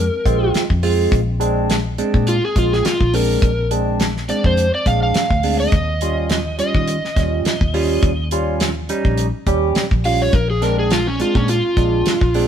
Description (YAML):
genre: straight-eighth soul blues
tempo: 104 BPM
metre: 4/4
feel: swing 55% on 16ths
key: Bb mixolydian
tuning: A4 = 440 Hz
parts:
  - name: overdriven slide guitar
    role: melody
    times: 0.0-12.5 s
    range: Db4 to F5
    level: -20 LUFS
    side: equal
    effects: none
  - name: barky tine electric piano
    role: accompaniment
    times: 0.0-12.5 s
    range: G3 to G4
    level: -21 LUFS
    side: right 2 dB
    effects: phaser
  - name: vintage muted fingered electric bass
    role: bass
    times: 0.0-12.5 s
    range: Bb1 to Eb3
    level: -21 LUFS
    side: left 1 dB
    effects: none
  - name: damped 70s drum kit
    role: drums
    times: 0.3-12.5 s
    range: hi-hat, kick drum, snare drum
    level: -20 LUFS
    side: equal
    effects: none
room: moderate stone room reverb, RT60 1.2 s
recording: band playing live in one room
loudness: -15 LUFS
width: side -9 dB against mid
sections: 0.0-12.5 A section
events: electric slide guitar solo 0.0-12.5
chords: 0.0 Bb9; 5.7 Eb9; 10.3 Bb9